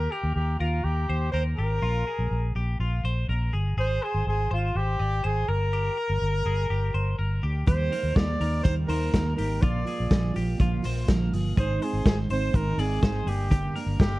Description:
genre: jangly indie pop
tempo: 123 BPM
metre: 4/4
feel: straight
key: Eb major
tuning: A4 = 442 Hz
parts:
  - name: clear trumpet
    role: melody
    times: 0.0-14.2 s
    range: F4 to D5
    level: -30 LUFS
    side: equal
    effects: none
  - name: twelve-string electric guitar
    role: arpeggios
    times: 0.0-14.2 s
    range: F4 to D5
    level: -36 LUFS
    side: left 2 dB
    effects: none
  - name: vintage muted fingered electric bass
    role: bass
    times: 0.0-14.2 s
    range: G1 to Eb2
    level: -26 LUFS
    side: equal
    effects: none
  - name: picked steel-string acoustic guitar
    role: accompaniment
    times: 7.7-14.2 s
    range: G2 to F4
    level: -30 LUFS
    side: right 4 dB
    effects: none
  - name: vintage drum kit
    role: drums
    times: 7.7-14.1 s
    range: hi-hat, kick drum, snare drum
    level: -24 LUFS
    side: equal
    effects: none
room: little or no reverb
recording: dark, warm production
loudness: -23 LUFS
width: side -18 dB against mid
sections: 0.0-14.2 A section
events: none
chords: 0.0 Eb; 1.8 Bb5; 3.8 Ab; 5.5 Gm; 7.7 Eb; 9.6 Bb; 11.6 Ab; 13.3 Gm

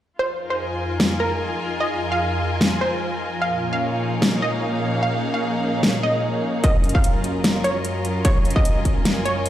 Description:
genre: heavy wobble dubstep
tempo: 149 BPM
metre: 4/4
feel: swing 55% on 16ths, half-time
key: F phrygian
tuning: A4 = 440 Hz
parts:
  - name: wide unison pluck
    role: melody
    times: 0.2-9.5 s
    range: Bb4 to F5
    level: -25 LUFS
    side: right 1 dB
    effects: cassette tape, tape echo
  - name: lush unison pad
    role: sustained chords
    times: 0.2-9.5 s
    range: F2 to Bb4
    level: -26 LUFS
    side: equal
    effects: chorus, sidechain pumping
  - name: rich studio string section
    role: texture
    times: 0.2-9.5 s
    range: Gb3 to Ab5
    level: -26 LUFS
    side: left 1 dB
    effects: sidechain pumping
  - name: dubstep drum kit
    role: drums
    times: 1.0-9.5 s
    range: hi-hat, snare drum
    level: -21 LUFS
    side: equal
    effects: studio reverb
  - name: electronic kick drum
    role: drums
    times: 6.6-8.9 s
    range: none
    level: -18 LUFS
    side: equal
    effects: distortion, studio reverb
room: moderate plate reverb, RT60 2.0 s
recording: played on a big sound system in a bare room, stone room reverb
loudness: -19 LUFS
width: side -12 dB against mid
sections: 0.2-9.5 A section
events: filter sweep on analog synth pad 0.2-9.5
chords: 0.2 Fm7; 3.4 Bbm; 6.6 Gb

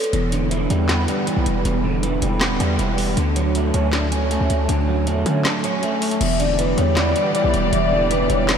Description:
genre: hip hop, trap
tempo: 158 BPM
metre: 4/4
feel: half-time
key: E dorian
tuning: A4 = 440 Hz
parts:
  - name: vibraphone with medium mallets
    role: melody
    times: 0.0-0.1, 6.2-8.6 s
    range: B4 to E5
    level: -24 LUFS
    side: left 1 dB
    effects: low-pass filter, ping-pong delay
  - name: trap drum kit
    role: drums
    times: 0.0-8.6 s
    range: crash cymbal, handclaps, hi-hat, snare drum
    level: -26 LUFS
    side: left 1 dB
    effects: none
  - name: electric guitar at the edge of break-up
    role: accompaniment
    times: 0.1-8.6 s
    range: E2 to D4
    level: -21 LUFS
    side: right 2 dB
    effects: ensemble chorus, low-pass filter
  - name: hard-hitting 808-style bass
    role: bass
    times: 0.1-8.6 s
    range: D1 to D3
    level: -21 LUFS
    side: left 1 dB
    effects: none
  - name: muted studio string section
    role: sustained chords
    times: 6.2-8.6 s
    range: E3 to D5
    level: -24 LUFS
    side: left 4 dB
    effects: none
room: moderate huge ambient reverb, RT60 7.5 s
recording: dreamy mix soaked in reverb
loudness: -17 LUFS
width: side -7 dB against mid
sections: 0.0-6.2 A section; 6.2-8.6 B section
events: kick muted 5.4-6.2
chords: 0.1 Em7; 3.2 Dmaj7; 6.2 Em7

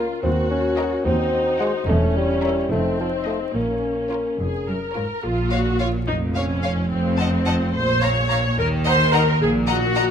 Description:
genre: cinematic, playful, whimsical film cue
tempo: 72 BPM (dotted quarters)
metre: 6/8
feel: straight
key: Bb minor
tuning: A4 = 440 Hz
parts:
  - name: rich studio violin section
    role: melody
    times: 0.0-10.0 s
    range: Db5 to Bb5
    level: -30 LUFS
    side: left 5 dB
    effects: none
  - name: clear studio violin section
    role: second line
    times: 0.0-10.0 s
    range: F4 to Gb5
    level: -30 LUFS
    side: left 2 dB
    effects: none
  - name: clear studio viola section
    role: accompaniment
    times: 0.0-10.1 s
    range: C4 to Db5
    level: -24 LUFS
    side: equal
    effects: none
  - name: dark bassoon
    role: accompaniment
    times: 0.0-4.4 s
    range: F3 to Db4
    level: -24 LUFS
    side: right 1 dB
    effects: none
  - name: clear French horn section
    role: sustained chords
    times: 0.0-5.0 s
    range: Db4 to C#5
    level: -26 LUFS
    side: left 7 dB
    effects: none
  - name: clear studio cello section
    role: bass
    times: 0.0-10.1 s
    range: Eb2 to Eb3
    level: -25 LUFS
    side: equal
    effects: none
  - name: rich studio double bass section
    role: bass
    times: 0.0-10.1 s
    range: E1 to Eb2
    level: -24 LUFS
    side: right 1 dB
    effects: none
room: light reverb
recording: close, detailed microphones, vinyl crackle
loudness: -18 LUFS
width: side -8 dB against mid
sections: 0.0-5.2 A section; 5.2-10.1 B section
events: none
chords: 0.2 Ebm; 1.1 Cdim/Eb; 1.9 Edim7; 2.7 F5; 3.5 Bbm; 6.9 F5; 7.7 Bbm; 8.6 Ebm

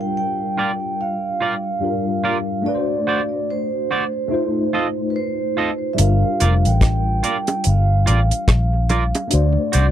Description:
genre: lovers rock reggae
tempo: 72 BPM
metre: 4/4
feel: swing 60% on 16ths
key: G minor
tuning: A4 = 438 Hz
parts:
  - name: vibraphone with soft mallets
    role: melody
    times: 0.0-9.9 s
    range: B4 to G5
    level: -24 LUFS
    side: right 3 dB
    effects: tape echo
  - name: tine electric piano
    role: accompaniment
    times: 0.0-9.9 s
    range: G3 to C5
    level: -24 LUFS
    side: left 3 dB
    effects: overdrive, ensemble chorus
  - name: twangy electric guitar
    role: stabs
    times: 0.6-9.9 s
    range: F4 to Eb5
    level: -20 LUFS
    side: right 4 dB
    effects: lush chorus
  - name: vintage muted fingered electric bass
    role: bass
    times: 6.0-9.9 s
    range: F1 to D2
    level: -16 LUFS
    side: equal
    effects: none
  - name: deep reggae drum kit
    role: drums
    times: 6.0-9.9 s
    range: hi-hat, kick drum, rim click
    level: -19 LUFS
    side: equal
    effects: none
  - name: bongos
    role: percussion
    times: 7.5-9.3 s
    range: none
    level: -28 LUFS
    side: right 2 dB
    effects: tape echo
room: light reverb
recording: dry, close 1970s-style studio recording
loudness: -17 LUFS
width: side -11 dB against mid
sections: 0.0-9.9 A section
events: none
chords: 0.0 Gm7; 2.7 D7; 4.3 F7; 6.0 Gm7; 9.3 D7

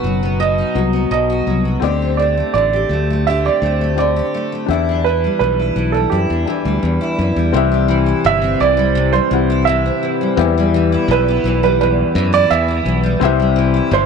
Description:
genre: acoustic pop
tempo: 84 BPM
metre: 4/4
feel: straight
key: E minor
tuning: A4 = 440 Hz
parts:
  - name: warm upright piano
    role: melody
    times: 0.0-14.1 s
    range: G4 to E5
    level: -17 LUFS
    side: right 10 dB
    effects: none
  - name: felt-muted upright piano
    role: accompaniment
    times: 0.0-14.1 s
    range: B3 to F#5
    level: -22 LUFS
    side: left 13 dB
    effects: none
  - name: picked steel-string acoustic guitar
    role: accompaniment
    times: 0.0-14.1 s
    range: E2 to G4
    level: -19 LUFS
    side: left 1 dB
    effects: double-tracked left and right
  - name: modern bright fingered electric bass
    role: bass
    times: 0.0-14.1 s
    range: F#1 to F#2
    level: -18 LUFS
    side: left 2 dB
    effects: none
room: moderate echo chamber reverb, RT60 1.8 s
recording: 1960s-style stereo with parts hard left and right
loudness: -13 LUFS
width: side -6 dB against mid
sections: 0.0-7.5 A section; 7.5-14.1 B section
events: none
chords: 0.0 B; 1.8 D7sus4; 4.7 Em7; 7.5 C; 10.4 Em; 13.2 C

